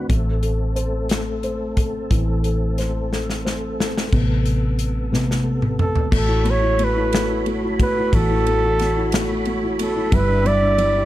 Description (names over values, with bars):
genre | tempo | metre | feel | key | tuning
six-eight pop ballad | 60 BPM (dotted quarters) | 6/8 | straight | A major from 6.1 s | A4 = 440 Hz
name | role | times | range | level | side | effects
felt-muted upright piano | accompaniment | 0.0-11.1 s | A2 to F#5 | -24 LUFS | left 2 dB | none
tonewheel organ | sustained chords | 0.0-11.1 s | C3 to B5 | -29 LUFS | equal | overdrive, chorus vibrato, slow rotary speaker
vintage muted fingered electric bass | bass | 0.0-11.1 s | G1 to A1 | -23 LUFS | equal | none
natural country drum kit | drums | 0.1-10.9 s | crash cymbal, hi-hat, kick drum, ride cymbal, snare drum, toms | -24 LUFS | equal | none
breathy flugelhorn | melody | 5.8-11.1 s | A4 to D5 | -21 LUFS | right 1 dB | none
warm French horn section | second line | 6.1-11.1 s | E4 to F#4 | -28 LUFS | right 6 dB | none
room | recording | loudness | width
small room ambience | dark, warm production | -18 LUFS | side -14 dB against mid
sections
0.0-4.1 A section; 4.1-6.1 B section; 6.1-11.1 C section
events
drum fill 3.1-4.1, 5.1-6.1; felt piano solo 4.1-6.1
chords
0.1 Am; 4.1 Amadd9; 6.1 Aadd9; 10.1 G6